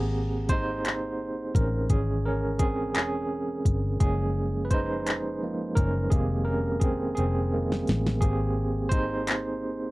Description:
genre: slow six-eight R&B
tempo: 57 BPM (dotted quarters)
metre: 6/8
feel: straight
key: Ab major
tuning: A4 = 440 Hz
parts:
  - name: overdriven tine electric piano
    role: accompaniment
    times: 0.0-9.9 s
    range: Eb3 to C5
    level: -28 LUFS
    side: right 2 dB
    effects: fast tremolo
  - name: vintage muted fingered electric bass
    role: bass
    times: 0.0-9.9 s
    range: Fb1 to A1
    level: -29 LUFS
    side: left 1 dB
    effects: none
  - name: smooth R&B drum kit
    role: drums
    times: 0.5-9.4 s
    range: handclaps, hi-hat, kick drum, snare drum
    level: -25 LUFS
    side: left 1 dB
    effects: none
room: little or no reverb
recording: dry, close 1970s-style studio recording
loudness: -24 LUFS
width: side -20 dB against mid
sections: 0.0-9.9 A section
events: tine electric piano solo 0.0-9.9; drum fill 7.2-8.2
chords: 0.0 Abmaj9; 1.9 Dbm/Ab; 4.0 Gbmaj9; 6.1 Fm11; 8.2 Abmaj9

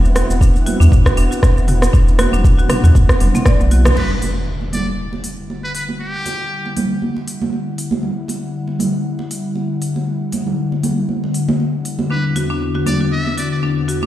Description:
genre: afro house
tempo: 118 BPM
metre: 4/4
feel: swing 55% on 16ths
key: E minor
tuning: A4 = 440 Hz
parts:
  - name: warm analog pad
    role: sustained chords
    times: 0.0-14.1 s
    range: E2 to F#5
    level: -22 LUFS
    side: left 3 dB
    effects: chorus, sidechain pumping
  - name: warm sub bass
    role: bass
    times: 0.0-3.9 s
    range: E1 to E2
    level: -13 LUFS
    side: equal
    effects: tube saturation, sidechain pumping
  - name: deep house drum kit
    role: drums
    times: 0.1-14.0 s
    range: crash cymbal, hi-hat, rim click, shaker, toms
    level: -22 LUFS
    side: equal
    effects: none
  - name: marimba with hard mallets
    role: arpeggios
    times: 0.2-3.9, 12.1-14.1 s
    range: C4 to D5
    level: -24 LUFS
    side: left 1 dB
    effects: sidechain pumping, ping-pong delay
  - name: congas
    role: percussion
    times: 0.2-14.1 s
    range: none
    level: -22 LUFS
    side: right 3 dB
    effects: none
  - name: electronic kick drum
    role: drums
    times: 0.4-3.6 s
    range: none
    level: -13 LUFS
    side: equal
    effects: none
  - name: trumpet with metal mute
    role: melody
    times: 4.0-6.7, 12.1-13.6 s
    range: G4 to E5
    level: -26 LUFS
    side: equal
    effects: ping-pong delay
  - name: impact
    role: sound effects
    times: 4.0-6.0 s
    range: none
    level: -24 LUFS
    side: equal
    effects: none
room: light reverb, digital ambience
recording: played on a big sound system in a bare room, stone room reverb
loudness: -14 LUFS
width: side -14 dB against mid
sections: 0.0-4.0 A section; 4.0-14.1 B section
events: drum fill 3.5-4.0; band accent 3.8; impact 4.0-6.0; filter sweep on analog synth pad 4.0-14.1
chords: 0.0 D13/E; 4.0 Em9; 12.1 D13/E

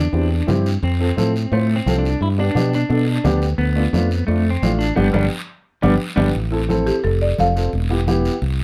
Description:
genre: latin, cumbia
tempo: 174 BPM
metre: 4/4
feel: straight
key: unclear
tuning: A4 = 442 Hz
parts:
  - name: clean electric guitar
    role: second line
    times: 0.0-6.3 s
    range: G3 to E4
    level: -25 LUFS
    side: equal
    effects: tremolo
  - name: fingered electric bass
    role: bass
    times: 0.0-8.6 s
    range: E1 to B2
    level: -22 LUFS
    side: equal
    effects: none
  - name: dark upright piano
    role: accompaniment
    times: 0.1-8.3 s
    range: A3 to C5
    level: -25 LUFS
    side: equal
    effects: none
  - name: congas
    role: percussion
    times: 0.1-8.6 s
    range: none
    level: -27 LUFS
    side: equal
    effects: none
  - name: guiro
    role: percussion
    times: 0.1-8.6 s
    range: none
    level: -36 LUFS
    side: equal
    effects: none
  - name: buzzing marimba with medium mallets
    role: melody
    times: 6.9-7.7 s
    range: G4 to F5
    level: -23 LUFS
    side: equal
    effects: none
room: moderate studio ambience, RT60 0.5 s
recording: none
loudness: -19 LUFS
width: mono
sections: 0.0-6.4 A section; 6.4-8.6 B section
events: clean electric guitar solo 0.0-6.4; band accent 5.0-6.4; marimba solo 6.4-8.6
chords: 0.0 C; 0.8 F; 2.2 G; 3.6 Dm; 5.0 G; 6.4 Am; 7.0 F; 7.7 Em

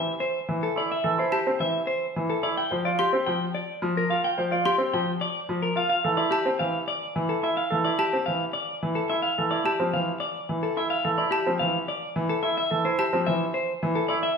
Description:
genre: classical, minimalist pattern music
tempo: 108 BPM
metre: 3/4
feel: straight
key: unclear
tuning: A4 = 440 Hz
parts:
  - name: clean electric guitar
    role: melody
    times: 0.0-14.4 s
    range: G4 to G5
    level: -27 LUFS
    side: left 2 dB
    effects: none
  - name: clear baby grand piano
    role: accompaniment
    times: 0.0-14.0 s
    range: E3 to F3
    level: -29 LUFS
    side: equal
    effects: none
  - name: clear concert grand piano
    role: arpeggios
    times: 0.8-14.3 s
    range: C4 to C5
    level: -28 LUFS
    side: right 3 dB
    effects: none
  - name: xylophone with rubber mallets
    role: arpeggios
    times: 1.3-13.2 s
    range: A5 to C6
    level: -30 LUFS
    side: left 2 dB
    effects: none
room: wet stone room reverb, RT60 1.2 s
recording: minimal, uncompressed stereo recording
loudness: -23 LUFS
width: side -6 dB against mid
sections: 0.0-14.4 A section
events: none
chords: 0.0 Esus4; 2.6 Csus4; 5.9 Dsus2 (rootless)

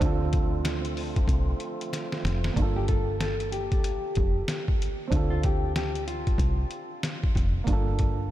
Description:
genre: hip hop, boom-bap hip-hop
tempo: 94 BPM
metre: 4/4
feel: swing 61% on 16ths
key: G minor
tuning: A4 = 440 Hz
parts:
  - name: dark grand piano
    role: accompaniment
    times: 0.0-8.3 s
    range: Bb3 to A4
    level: -35 LUFS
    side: right 6 dB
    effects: high-pass filter, low-pass filter
  - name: tonewheel organ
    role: sustained chords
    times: 0.0-2.5 s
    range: D3 to F4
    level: -37 LUFS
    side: right 2 dB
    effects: overdrive, fast rotary speaker, high-pass filter, low-pass filter
  - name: deep dub fingered electric bass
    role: bass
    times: 0.0-8.3 s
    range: F1 to D2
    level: -28 LUFS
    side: equal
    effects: none
  - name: trip hop sampler-style drum kit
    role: drums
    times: 0.0-8.2 s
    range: hi-hat, kick drum, snare drum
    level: -27 LUFS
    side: equal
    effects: none
  - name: finger snaps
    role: percussion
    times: 0.6-2.1 s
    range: none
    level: barely audible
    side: none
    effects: none
  - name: mellow electric guitar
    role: melody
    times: 2.8-7.0 s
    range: F4 to A4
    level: -33 LUFS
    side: left 2 dB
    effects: high-pass filter, low-pass filter, diffuse ambient delay
room: light reverb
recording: none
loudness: -24 LUFS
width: side -14 dB against mid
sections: 0.0-2.6 A section; 2.6-8.3 B section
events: drum fill 1.9-2.6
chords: 0.0 Dm7; 2.6 Gm9; 5.1 Dm7; 7.7 Gm9

